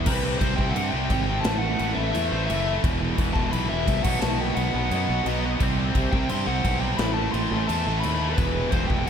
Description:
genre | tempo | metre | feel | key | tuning
heavy metal | 173 BPM | 4/4 | straight | unclear | A4 = 439 Hz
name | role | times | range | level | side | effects
bright symphonic string section | sustained chords | 0.0-9.1 s | E3 to E5 | -38 LUFS | left 1 dB | none
heavy high-gain guitar | riff | 0.0-9.1 s | E2 to C4 | -30 LUFS | right 11 dB | distortion, slapback echo
heavy high-gain guitar | riff | 0.0-9.1 s | E2 to C4 | -34 LUFS | left 2 dB | distortion
scooped high-gain guitar | riff | 0.0-9.1 s | E2 to C4 | -31 LUFS | left 11 dB | distortion, slapback echo
fuzz fingered electric bass | bass | 0.0-9.1 s | E1 to G2 | -27 LUFS | equal | overdrive
high-gain lead guitar | melody | 0.1-9.1 s | A4 to C6 | -29 LUFS | left 2 dB | distortion, slapback echo
big rock drum kit | drums | 0.1-9.1 s | crash cymbal, kick drum, snare drum | -27 LUFS | equal | none
room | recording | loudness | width
light reverb, studio ambience | none | -21 LUFS | side -8 dB against mid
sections
0.1-9.1 A section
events
half time 0.1-9.1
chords
0.1 C; 1.5 A5; 2.8 Em; 4.0 B; 5.6 C; 7.0 Am; 8.4 Em

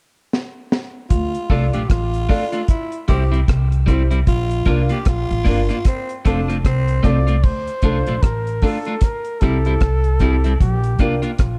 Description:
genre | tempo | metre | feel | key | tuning
roots reggae | 76 BPM | 4/4 | swing 59% on 16ths | D minor | A4 = 440 Hz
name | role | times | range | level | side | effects
deep reggae drum kit | drums | 0.3-11.6 s | crash cymbal, hi-hat, kick drum, rim click, snare drum | -19 LUFS | equal | none
growling tenor saxophone | second line | 1.1-7.2 s | C4 to G4 | -28 LUFS | equal | dub echo
upright bass | bass | 1.1-11.6 s | F1 to D2 | -21 LUFS | equal | none
electric guitar at the edge of break-up | accompaniment | 1.5-11.3 s | G3 to F4 | -28 LUFS | equal | vibrato effect
dark upright piano | stabs | 1.5-11.2 s | C4 to D5 | -28 LUFS | equal | none
warm flugelhorn | melody | 7.0-11.6 s | F4 to D5 | -28 LUFS | equal | none
room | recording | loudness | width
small room ambience | dark, warm production | -18 LUFS | mono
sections
0.0-1.1 A section; 1.1-7.4 B section; 7.4-11.6 C section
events
drum fill 0.3-1.1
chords
0.0 N.C.; 1.1 Dm; 2.7 C; 4.3 Bb; 5.9 F; 7.4 Dm; 9.0 C; 10.6 Bb

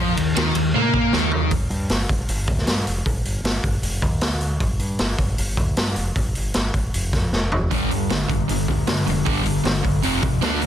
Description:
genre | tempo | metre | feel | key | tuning
hard rock | 155 BPM | 4/4 | straight | G minor | A4 = 440 Hz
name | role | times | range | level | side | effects
overdriven semi-hollow guitar | riff | 0.0-1.5, 7.7-10.7 s | F2 to D4 | -24 LUFS | right 14 dB | none
sludgy distorted guitar | riff | 0.0-1.5, 7.7-10.7 s | F2 to D4 | -23 LUFS | left 11 dB | overdrive
growling fingered electric bass | bass | 0.0-10.7 s | F1 to Bb2 | -25 LUFS | equal | overdrive
raw garage drum kit | drums | 0.2-10.7 s | hi-hat, kick drum, ride cymbal, snare drum, toms | -22 LUFS | equal | none
room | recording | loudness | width
light reverb | dense, heavily limited modern master | -19 LUFS | side -10 dB against mid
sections
0.0-1.5 A section; 1.5-10.7 B section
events
drum fill 0.7-1.5, 7.3-7.7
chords
0.0 Eb5; 1.5 G5; 3.8 Ebsus2/F; 4.2 N.C.; 4.6 G5; 6.9 N.C.; 7.7 G5; 10.0 F5

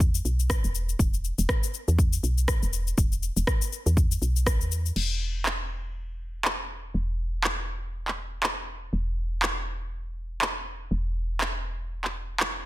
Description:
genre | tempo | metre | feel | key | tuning
afro house | 121 BPM | 4/4 | swing 57% on 16ths | unclear | A4 = 440 Hz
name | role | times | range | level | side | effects
woody FM bass | bass | 0.0-12.7 s | E1 to E2 | -28 LUFS | equal | sidechain pumping
afro-pop drum kit | drums | 0.0-12.5 s | cabasa, crash cymbal, handclaps, rim click | -28 LUFS | left 1 dB | soft clipping on snare
electronic kick drum | drums | 0.0-4.6 s | none | -24 LUFS | equal | none
room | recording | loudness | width
digital ambience | dense, heavily limited modern master | -25 LUFS | side -16 dB against mid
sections
0.0-5.0 A section; 5.0-12.7 B section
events
none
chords
none

